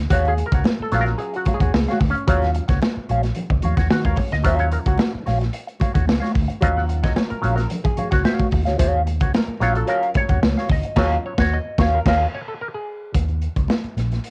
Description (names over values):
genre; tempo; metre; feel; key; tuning
funk; 110 BPM; 4/4; straight; Eb minor; A4 = 440 Hz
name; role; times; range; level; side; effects
mellow electric guitar; accompaniment; 0.0-12.3 s; Gb4 to Gb5; -26 LUFS; equal; wah, cassette tape
vintage muted fingered electric bass; bass; 0.0-14.2 s; Bb1 to Eb3; -24 LUFS; equal; none
auto-wah clav; stabs; 0.1-13.1 s; Gb3 to Gb5; -29 LUFS; equal; overdrive, cassette tape
crunchy breakbeat drum kit; drums; 0.1-14.3 s; crash cymbal, hi-hat, kick drum, snare drum; -23 LUFS; equal; cassette tape
congas; percussion; 0.1-14.1 s; none; -33 LUFS; equal; none
room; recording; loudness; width
studio reverb; home recording on cassette; -20 LUFS; mono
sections
0.0-13.2 A section; 13.2-14.3 B section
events
clav solo 0.0-13.2; band accent 11.0-13.2; break 12.1-13.2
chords
0.0 Ebm9; 13.2 Eb5